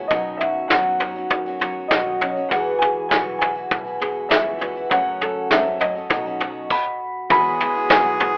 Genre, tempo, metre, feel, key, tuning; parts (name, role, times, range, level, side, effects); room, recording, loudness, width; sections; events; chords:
indie folk with a building arrangement; 100 BPM; 4/4; straight; E major; A4 = 440 Hz
dark upright piano; melody; 0.0-8.4 s; C#5 to B5; -25 LUFS; equal
fingerpicked steel-string acoustic guitar; accompaniment; 0.0-8.4 s; E2 to A4; -29 LUFS; equal
picked steel-string acoustic guitar; accompaniment; 0.0-8.4 s; F#2 to F#4; -32 LUFS; equal
upright bass; bass; 0.1-8.4 s; B1 to F#2; -43 LUFS; equal
vintage brush drum kit; drums; 0.1-8.3 s; crash cymbal, kick drum, snare drum, toms; -22 LUFS; equal
warm harmonica; second line; 7.3-8.4 s; G#4; -24 LUFS; equal
warm grand piano; accompaniment; 7.3-8.4 s; E2 to B4; -33 LUFS; equal
hand-pumped harmonium; sustained chords; 7.3-8.4 s; E3 to F#4; -33 LUFS; equal
little or no reverb; rough home demo mix, telephone sound; -21 LUFS; mono
0.0-7.3 A section; 7.3-8.4 B section
0.1 Badd9; 2.5 Eadd9; 4.9 F#m; 6.1 Badd9; 7.3 Eadd9